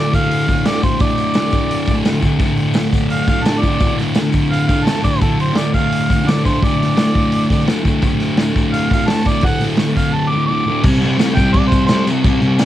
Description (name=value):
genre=garage rock duo or trio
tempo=171 BPM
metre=4/4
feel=straight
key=unclear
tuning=A4 = 440 Hz
part: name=clear harmonica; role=melody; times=0.0-12.1 s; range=A4 to D6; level=-21 LUFS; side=right 2 dB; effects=overdrive, cassette tape
part: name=thick fuzz guitar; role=riff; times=0.0-12.7 s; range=D2 to C4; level=-16 LUFS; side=left 1 dB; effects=distortion, cassette tape
part: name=vintage drum kit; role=drums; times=0.1-12.7 s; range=crash cymbal, hi-hat, kick drum, snare drum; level=-17 LUFS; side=equal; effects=cassette tape
part: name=tambourine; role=percussion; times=0.1-12.7 s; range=none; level=-37 LUFS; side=left 6 dB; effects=none
room=light reverb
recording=home recording on cassette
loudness=-13 LUFS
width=side -12 dB against mid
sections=0.0-10.8 A section; 10.8-12.7 B section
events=none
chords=0.0 D5; 10.8 C5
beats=0.30 0.65 | 1.00 1.34 1.69 2.04 | 2.39 2.74 3.09 3.44 | 3.80 4.15 4.50 4.85 | 5.21 5.56 5.91 6.26 | 6.62 6.97 7.33 7.68 | 8.03 8.38 8.74 9.09 | 9.44 9.79 10.15 10.50 | 10.85 11.20 11.55 11.90 | 12.25 12.61